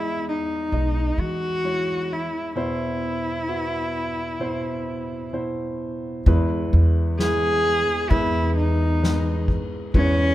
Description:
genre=acoustic folk-pop ballad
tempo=65 BPM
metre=4/4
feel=straight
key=E major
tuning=A4 = 440 Hz
part: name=dark cello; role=melody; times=0.0-10.3 s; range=C#4 to G#4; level=-24 LUFS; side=equal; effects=none
part: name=dark baby grand piano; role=accompaniment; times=0.0-10.3 s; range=E2 to D#5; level=-28 LUFS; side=equal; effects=none
part: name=upright bass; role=bass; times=0.0-10.3 s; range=B1 to E3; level=-22 LUFS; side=equal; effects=none
part: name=soft-mallet drum kit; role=drums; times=6.3-10.2 s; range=kick drum, ride cymbal, snare drum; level=-25 LUFS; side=left 1 dB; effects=none
room=little or no reverb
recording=minimal, uncompressed stereo recording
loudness=-21 LUFS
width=side -14 dB against mid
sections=0.0-6.3 A section; 6.3-10.3 B section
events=break 2.6-6.3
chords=0.0 Emaj7; 2.6 Cmaj7/E; 6.3 E

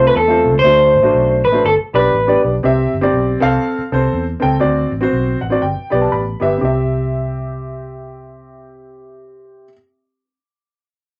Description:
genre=uptempo 1960s-style soul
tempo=120 BPM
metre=4/4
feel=swing 60% on 8ths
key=C major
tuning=A4 = 440 Hz
part: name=electric guitar through a small old amp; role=melody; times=0.0-2.4 s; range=A4 to C5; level=-14 LUFS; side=equal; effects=none
part: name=warm baby grand piano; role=accompaniment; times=0.0-9.7 s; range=A3 to B5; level=-20 LUFS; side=equal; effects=none
part: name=vintage muted fingered electric bass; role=bass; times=0.0-9.7 s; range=G1 to E2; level=-22 LUFS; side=equal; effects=none
room=moderate studio ambience, RT60 0.5 s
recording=none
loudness=-15 LUFS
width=mono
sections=0.0-2.6 A section; 2.6-6.6 B section; 6.6-10.6 C section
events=grand piano fill 5.1-6.6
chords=0.0 F/C; 0.6 D7; 1.6 G; 2.6 C; 3.4 F/C; 4.6 D7; 5.6 G; 6.6 C

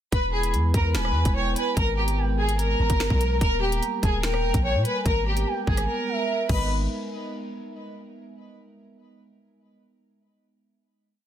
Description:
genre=hip hop, drill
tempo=146 BPM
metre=4/4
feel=half-time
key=G# harmonic minor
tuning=A4 = 441 Hz
part: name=warm symphonic violin section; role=melody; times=0.1-6.7 s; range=G4 to C#5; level=-27 LUFS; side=left 1 dB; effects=none
part: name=gliding portamento lead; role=second line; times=0.1-6.7 s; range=D#5 to B5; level=-33 LUFS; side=right 5 dB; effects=chorus, digital delay
part: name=glass harmonica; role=sustained chords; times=0.1-6.7 s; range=G3 to B4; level=-34 LUFS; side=equal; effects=stereo widening
part: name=long sustained 808-style bass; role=bass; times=0.1-6.9 s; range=D#1 to A#2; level=-25 LUFS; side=equal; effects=none
part: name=drill drum kit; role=drums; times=0.1-6.6 s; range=crash cymbal, finger snaps, hi-hat, kick drum, rim click, snare drum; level=-26 LUFS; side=equal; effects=none
room=digital ambience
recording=dense, heavily limited modern master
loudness=-21 LUFS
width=side -10 dB against mid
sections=0.1-6.7 hook; 6.7-8.3 final hit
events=silent gap 5.9-6.7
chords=0.1 E; 1.8 G#madd9; 3.4 D#; 5.1 G#madd9; 6.7 N.C.

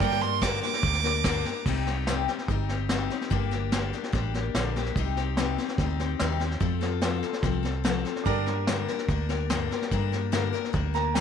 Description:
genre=honky-tonk and classic country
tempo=145 BPM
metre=4/4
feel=straight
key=G minor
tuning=A4 = 443 Hz
part: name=clear fiddle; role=second line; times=0.0-1.6 s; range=G5 to D6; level=-28 LUFS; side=right 12 dB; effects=none
part: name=clear baby grand piano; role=accompaniment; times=0.0-1.6, 8.2-11.2 s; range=D4 to Bb5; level=-33 LUFS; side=right 13 dB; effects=none
part: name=picked steel-string acoustic guitar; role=accompaniment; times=0.0-11.2 s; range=G2 to Bb4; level=-30 LUFS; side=left 13 dB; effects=none
part: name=vintage muted fingered electric bass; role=bass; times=0.0-11.2 s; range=G1 to G2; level=-29 LUFS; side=right 1 dB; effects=none
part: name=vintage brush drum kit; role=drums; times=0.0-11.2 s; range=crash cymbal, hi-hat, kick drum, snare drum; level=-30 LUFS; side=right 1 dB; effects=none
room=light reverb, small room ambience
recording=1960s-style stereo with parts hard left and right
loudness=-25 LUFS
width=side -8 dB against mid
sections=0.0-1.7 A section; 1.7-11.2 B section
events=fiddle solo 0.0-1.7; grand piano fill 10.7-11.2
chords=0.0 Gm; 1.7 Cm; 3.3 Gm; 5.0 Cm; 6.6 F; 8.3 Gm

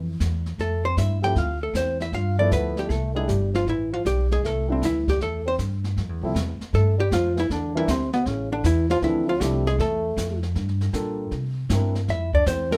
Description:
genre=jazz, small-group swing and bop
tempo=157 BPM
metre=4/4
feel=swing 66% on 8ths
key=C major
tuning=A4 = 440 Hz
part: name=hollow-body jazz guitar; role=melody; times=0.0-12.8 s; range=E3 to G5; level=-27 LUFS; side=equal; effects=none
part: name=trombone with cup mute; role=second line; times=0.0-12.8 s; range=B2 to G4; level=-33 LUFS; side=equal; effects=none
part: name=upright bass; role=bass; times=0.0-12.8 s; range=G1 to C3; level=-27 LUFS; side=equal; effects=none
part: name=jazz brush drum kit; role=drums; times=0.2-12.8 s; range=brushed snare drum, hi-hat, kick drum, snare drum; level=-33 LUFS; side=equal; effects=none
part: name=dark baby grand piano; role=accompaniment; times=1.2-12.8 s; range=E3 to Bb4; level=-31 LUFS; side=equal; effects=none
room=little or no reverb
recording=none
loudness=-24 LUFS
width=mono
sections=0.0-6.0 A section; 6.0-12.8 B section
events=none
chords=0.0 Fmaj9; 1.4 Dsus2; 2.1 G13; 2.9 C69; 6.0 Fmaj9; 7.5 Em7b5; 8.3 A5; 9.0 Dm7; 10.6 Gm7; 11.3 C7; 12.1 Fmaj7(no3)

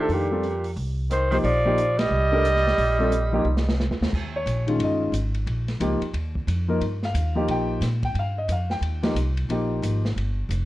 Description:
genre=modal jazz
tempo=179 BPM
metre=4/4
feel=swing 62% on 8ths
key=F mixolydian, Eb mixolydian from 4.1 s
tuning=A4 = 441 Hz
part: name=mellow trumpet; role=melody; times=0.0-3.8 s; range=G4 to Eb5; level=-24 LUFS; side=right 1 dB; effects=none
part: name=bright tenor saxophone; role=second line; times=0.0-3.8 s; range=Bb2 to G3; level=-29 LUFS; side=right 2 dB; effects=none
part: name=warm grand piano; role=accompaniment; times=0.0-10.0 s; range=Eb3 to G5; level=-25 LUFS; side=left 1 dB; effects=none
part: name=upright bass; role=bass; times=0.1-10.7 s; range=F1 to Bb2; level=-25 LUFS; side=equal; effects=none
part: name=open jazz drum kit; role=drums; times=0.1-10.6 s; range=crash cymbal, hi-hat, kick drum, ride cymbal, rim click, snare drum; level=-31 LUFS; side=equal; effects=none
room=light reverb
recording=worn, warbling old tape, cassette tape, warbly pitch drift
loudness=-21 LUFS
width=side -16 dB against mid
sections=0.0-4.1 A section; 4.1-10.7 B section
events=band accent 2.0; drum fill 3.5-4.1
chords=0.0 F9sus4; 4.1 Eb9

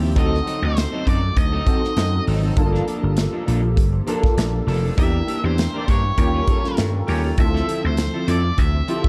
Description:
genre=polished 1980s jazz-funk pop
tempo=100 BPM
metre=4/4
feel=swing 54% on 16ths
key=unclear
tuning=A4 = 440 Hz
part: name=warm grand piano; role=accompaniment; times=0.0-9.1 s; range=Bb3 to A4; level=-29 LUFS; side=equal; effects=ensemble chorus
part: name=hollow soft pad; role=sustained chords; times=0.0-9.1 s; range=D3 to E5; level=-35 LUFS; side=equal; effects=none
part: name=electric guitar at the edge of break-up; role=riff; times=0.0-9.1 s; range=F3 to C5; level=-31 LUFS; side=equal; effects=lush chorus
part: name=vintage slap bass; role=bass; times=0.0-8.8 s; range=F1 to G2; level=-23 LUFS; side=equal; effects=none
part: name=octave-fuzz lead guitar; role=melody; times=0.2-9.1 s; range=C5 to E5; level=-30 LUFS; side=equal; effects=distortion, digital delay
part: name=modern studio drum kit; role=drums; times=0.2-9.1 s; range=hi-hat, kick drum, snare drum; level=-24 LUFS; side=equal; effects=none
part: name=mellow horn section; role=second line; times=5.7-7.3 s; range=Db4 to D5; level=-35 LUFS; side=equal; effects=none
room=light reverb, small room ambience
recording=dark, warm production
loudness=-20 LUFS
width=mono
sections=0.0-9.1 A section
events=band accent 5.0-7.4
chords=0.2 D7b9; 2.6 Gm9; 5.0 Em7b5; 6.2 Eb9; 7.4 Dm9

